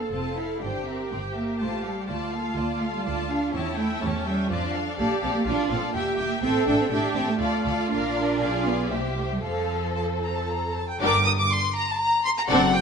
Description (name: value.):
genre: quick classical-period movement for string orchestra.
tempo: 122 BPM.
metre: 3/4.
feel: rubato.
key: F major.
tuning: A4 = 438 Hz.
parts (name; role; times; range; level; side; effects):
rich chamber violin section; melody; 0.0-12.8 s; E5 to Eb6; -28 LUFS; left 2 dB; none.
warm studio violin section; second line; 0.0-12.7 s; F4 to F5; -31 LUFS; left 3 dB; none.
clear symphonic viola section; accompaniment; 0.0-12.7 s; G3 to A4; -29 LUFS; right 2 dB; none.
rich studio cello section; bass; 0.0-12.8 s; F#2 to E4; -28 LUFS; right 2 dB; none.
warm chamber double bass section; bass; 0.0-12.8 s; E1 to F2; -32 LUFS; right 2 dB; none.
room: moderate scoring stage reverb, RT60 1.8 s.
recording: nothing above 10.9 kHz.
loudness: -23 LUFS.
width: side -6 dB against mid.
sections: 0.0-11.0 A section; 11.0-12.8 B section.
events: none.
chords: 0.0 F; 0.6 C7/G; 1.6 F/A; 2.1 Dm; 3.5 A7/E; 4.5 Dm/F; 5.0 Bbmaj7; 6.0 Edim; 6.4 Am7; 7.4 Dm; 7.9 Bb; 8.4 Bdim7; 8.9 C; 9.4 F; 11.0 Gm.